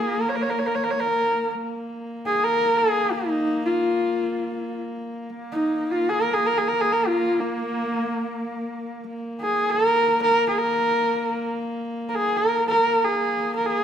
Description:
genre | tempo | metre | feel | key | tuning
mongolian traditional, Mongolian folk | free time | none | none | unclear | A4 = 440 Hz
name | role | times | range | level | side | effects
clear horsehead fiddle | melody | 0.0-13.8 s | Bb3 to Db5 | -21 LUFS | equal | none
rich horsehead fiddle | drone | 0.0-13.8 s | Bb3 | -30 LUFS | equal | none
room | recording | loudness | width
moderate recital hall reverb, RT60 1.6 s | none | -20 LUFS | side -9 dB against mid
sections
0.0-9.1 A section; 9.1-13.8 A section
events
none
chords
none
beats
free time

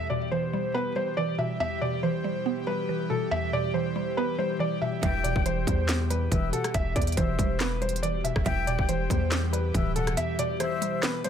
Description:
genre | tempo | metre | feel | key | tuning
hip hop, trap | 140 BPM | 4/4 | half-time | E minor | A4 = 439 Hz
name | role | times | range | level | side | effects
felt-muted upright piano | melody | 0.0-11.3 s | A4 to E5 | -30 LUFS | equal | ping-pong delay
mallet-like synth pluck | accompaniment | 0.0-11.3 s | E2 to B3 | -32 LUFS | right 1 dB | chorus, phaser
airy breathy pad | sustained chords | 0.0-11.3 s | B2 to G4 | -34 LUFS | equal | chorus
jazz flute | second line | 5.0-11.0 s | E5 to G5 | -35 LUFS | left 7 dB | ping-pong delay
dark symphonic string section | stabs | 5.0-5.2, 8.5-8.6 s | B1 to E3 | -35 LUFS | right 7 dB | none
hard-hitting 808-style bass | bass | 5.0-10.2 s | D1 to E2 | -29 LUFS | equal | none
trap drum kit | drums | 5.0-11.3 s | handclaps, hi-hat, kick drum, rim click, snare drum | -29 LUFS | equal | none
room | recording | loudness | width
light reverb | none | -25 LUFS | side -8 dB against mid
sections
0.0-11.3 A section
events
kick muted 10.2-11.3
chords
0.0 Em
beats
0.32 0.74 1.17 | 1.60 2.03 2.46 2.89 | 3.32 3.74 4.17 4.60 | 5.03 5.46 5.89 6.32 | 6.74 7.17 7.60 8.03 | 8.46 8.89 9.32 9.74 | 10.17 10.60 11.03

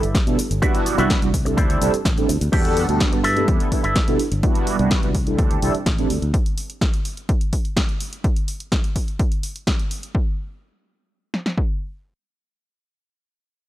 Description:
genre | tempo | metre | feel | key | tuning
filtered disco house | 126 BPM | 4/4 | straight | G major | A4 = 440 Hz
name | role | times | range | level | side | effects
electric guitar with an envelope filter | riff | 0.0-4.1 s | E4 to D5 | -24 LUFS | equal | phaser, sidechain pumping, low-pass filter
fingered electric bass | bass | 0.0-6.3 s | G1 to B2 | -23 LUFS | equal | sidechain pumping, low-pass filter
punchy analog drum machine | drums | 0.0-10.1 s | crash cymbal, hi-hat, shaker, snare drum | -28 LUFS | equal | none
punchy analog drum machine | drums | 0.1-11.7 s | kick drum, snare drum | -20 LUFS | equal | none
mellow synth brass | accompaniment | 0.3-6.1 s | G3 to F#5 | -22 LUFS | right 2 dB | chorus, phaser, sidechain pumping, low-pass filter
room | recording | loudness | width
little or no reverb | dry, gritty hardware recording, transformer saturation | -18 LUFS | side -14 dB against mid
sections
0.0-2.5 A section; 2.5-10.1 B section; 10.1-13.7 C section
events
drop 0.0-2.5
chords
0.0 G69; 0.6 Cmaj9#11; 1.6 D9sus4; 2.5 Em11; 3.2 G69; 4.4 Cmaj9#11; 5.4 D9sus4; 6.3 N.C.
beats
0.15 | 0.62 1.10 1.57 2.05 | 2.53 3.00 3.48 3.96 | 4.43 4.91 5.38 5.86 | 6.34 6.81 7.29 7.77 | 8.24 8.72 9.19 9.67 | 10.15 10.62 11.10 11.57

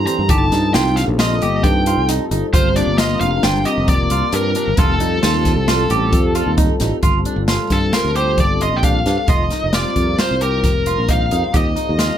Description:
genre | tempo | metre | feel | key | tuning
progressive instrumental, band music in an uneven meter | 133 BPM | 5/4 | straight | G minor | A4 = 439 Hz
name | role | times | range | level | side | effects
bluesy overdriven lead guitar | melody | 0.0-12.2 s | A4 to Bb5 | -20 LUFS | left 1 dB | distortion
vibraphone with soft mallets | second line | 0.0-6.5 s | F3 to G4 | -24 LUFS | left 2 dB | digital delay
dark analog pad | accompaniment | 0.0-12.2 s | E3 to Bb4 | -24 LUFS | left 2 dB | chorus
fretless electric bass | bass | 0.0-12.1 s | F1 to G2 | -20 LUFS | equal | none
clean electric guitar | arpeggios | 0.1-12.2 s | C4 to G4 | -23 LUFS | right 4 dB | lush chorus
open jazz drum kit | drums | 0.1-12.1 s | hi-hat, kick drum, snare drum | -18 LUFS | equal | none
room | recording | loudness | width
moderate small room reverb, RT60 0.5 s | none | -14 LUFS | side -10 dB against mid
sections
0.0-7.0 A section; 7.0-12.2 B section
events
none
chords
0.3 Eb/G; 2.5 Gm7; 4.8 F7; 7.0 Gm9; 9.3 F9sus4; 11.5 Eb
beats
| 0.29 0.74 1.19 1.64 2.09 | 2.54 2.99 3.44 3.89 4.33 | 4.78 5.23 5.68 6.13 6.58 | 7.03 7.48 7.93 8.38 8.83 | 9.29 9.74 10.19 10.64 11.09 | 11.54 11.99

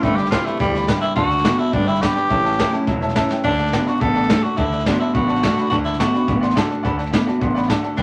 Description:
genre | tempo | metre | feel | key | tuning
rockabilly | 211 BPM | 4/4 | straight | D major | A4 = 441 Hz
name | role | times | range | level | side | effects
raspy tenor saxophone | melody | 0.0-8.0 s | G3 to A4 | -24 LUFS | equal | none
clear upright piano | accompaniment | 0.0-8.0 s | C#5 to C6 | -29 LUFS | equal | none
picked steel-string acoustic guitar | accompaniment | 0.0-8.0 s | G2 to G4 | -30 LUFS | equal | none
electric guitar through a small old amp | riff | 0.0-8.0 s | G2 to B3 | -25 LUFS | equal | none
upright bass | bass | 0.0-8.0 s | E1 to D2 | -28 LUFS | equal | none
jazz brush drum kit | drums | 0.0-8.0 s | hi-hat, kick drum, snare drum | -25 LUFS | equal | none
room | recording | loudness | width
wet small room reverb, RT60 0.5 s | vinyl crackle | -19 LUFS | mono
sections
0.0-3.4 A section; 3.4-8.0 B section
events
tenor saxophone solo 0.0-3.4; drum fill 3.3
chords
0.0 G; 1.2 D; 1.7 G; 2.3 A; 3.4 D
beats
| 0.03 0.32 0.60 0.89 | 1.17 1.45 1.74 2.02 | 2.31 2.59 2.87 3.16 | 3.44 3.73 4.01 4.29 | 4.58 4.86 5.14 5.43 | 5.71 6.00 6.28 6.56 | 6.85 7.13 7.42 7.70 | 7.98

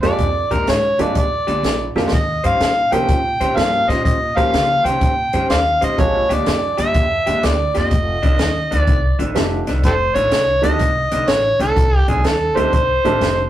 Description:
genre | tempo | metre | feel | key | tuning
electric blues shuffle | 124 BPM | 4/4 | swing 66% on 8ths | unclear | A4 = 440 Hz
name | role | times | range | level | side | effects
overdriven harmonica | melody | 0.0-13.5 s | G4 to G5 | -17 LUFS | equal | none
clear upright piano | accompaniment | 0.0-13.5 s | Eb3 to C5 | -22 LUFS | right 2 dB | none
electric guitar through a small old amp | riff | 0.0-13.3 s | F2 to C5 | -25 LUFS | left 2 dB | none
upright bass | bass | 0.0-13.5 s | F1 to Db3 | -21 LUFS | equal | none
compact cocktail drum kit | drums | 0.0-13.4 s | hi-hat, kick drum, snare drum | -21 LUFS | equal | none
room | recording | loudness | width
moderate small room reverb, RT60 0.5 s | rough rehearsal-room recording, tube saturation | -14 LUFS | side -12 dB against mid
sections
0.0-13.5 A section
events
drum fill 1.9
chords
0.0 Bb13; 2.1 Eb13; 6.0 Bb13; 7.9 F13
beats
| 0.20 0.68 1.16 1.65 | 2.13 2.61 3.09 3.57 | 4.06 4.54 5.02 5.50 | 5.98 6.46 6.95 7.43 | 7.91 8.39 8.87 9.36 | 9.84 10.32 10.80 11.28 | 11.77 12.25 12.73 13.21

